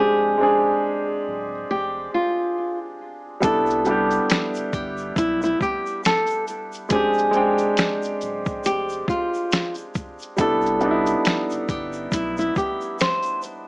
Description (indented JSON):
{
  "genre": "lo-fi hip hop",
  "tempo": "69 BPM",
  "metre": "4/4",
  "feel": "swing 58% on 16ths",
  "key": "C major",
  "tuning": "A4 = 440 Hz",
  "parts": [
    { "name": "flamenco guitar", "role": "melody", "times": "0.0-13.4 s", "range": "E4 to C5", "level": "-22 LUFS", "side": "equal", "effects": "low-pass filter, plate reverb" },
    { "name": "warm upright piano", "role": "accompaniment", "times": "0.0-13.7 s", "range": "G3 to G5", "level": "-24 LUFS", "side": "right 1 dB", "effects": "cassette tape, low-pass filter, plate reverb" },
    { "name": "soft dub sub bass", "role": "bass", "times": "0.0-12.5 s", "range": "D1 to C2", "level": "-38 LUFS", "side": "equal", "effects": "none" },
    { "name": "lo-fi sampler-style drum kit", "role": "drums", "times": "3.4-13.7 s", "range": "hi-hat, kick drum, shaker, snare drum", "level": "-23 LUFS", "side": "equal", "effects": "none" },
    { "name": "tube shaker", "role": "percussion", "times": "3.4-13.7 s", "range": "none", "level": "-45 LUFS", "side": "left 1 dB", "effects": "none" }
  ],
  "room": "moderate studio reverb, RT60 0.6 s",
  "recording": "small speaker sound",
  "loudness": "-19 LUFS",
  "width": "side -26 dB against mid",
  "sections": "0.0-13.7 A section",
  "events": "none",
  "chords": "0.0 Fm6; 3.4 Cmaj7; 6.9 Fm6; 10.4 Cmaj7"
}